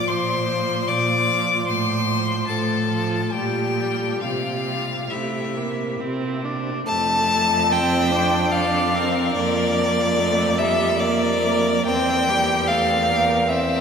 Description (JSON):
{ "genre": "classical, slow romantic movement for string quartet", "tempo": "66-76 BPM", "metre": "3/4", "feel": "rubato", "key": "F major", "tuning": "A4 = 440 Hz", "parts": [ { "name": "clear violin", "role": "melody", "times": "0.0-13.8 s", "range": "G4 to D6", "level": "-26 LUFS", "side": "left 5 dB", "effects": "none" }, { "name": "clear violin", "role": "second line", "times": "0.0-13.8 s", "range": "E4 to A5", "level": "-22 LUFS", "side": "left 1 dB", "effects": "none" }, { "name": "rich viola", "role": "accompaniment", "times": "0.0-13.8 s", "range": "F3 to D4", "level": "-25 LUFS", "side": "right 2 dB", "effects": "none" }, { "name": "rich cello", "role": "bass", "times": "0.1-13.8 s", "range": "E2 to C3", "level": "-25 LUFS", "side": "right 2 dB", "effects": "none" } ], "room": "wet cathedral reverb, RT60 5.1 s", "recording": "minimal, uncompressed stereo recording", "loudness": "-18 LUFS", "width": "side -6 dB against mid", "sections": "0.0-6.9 A section; 6.9-13.8 B section", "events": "none", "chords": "0.0 Bb; 1.7 F/A; 3.3 Gm/Bb; 4.2 C; 6.9 F; 9.4 Gm7/F; 11.9 C/E", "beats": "0.07 0.87 | 1.67 2.48 3.33 | 4.21 5.11 5.99 | 6.87 7.70 8.52 | 9.35 10.17 11.00 | 11.87 12.68 13.49" }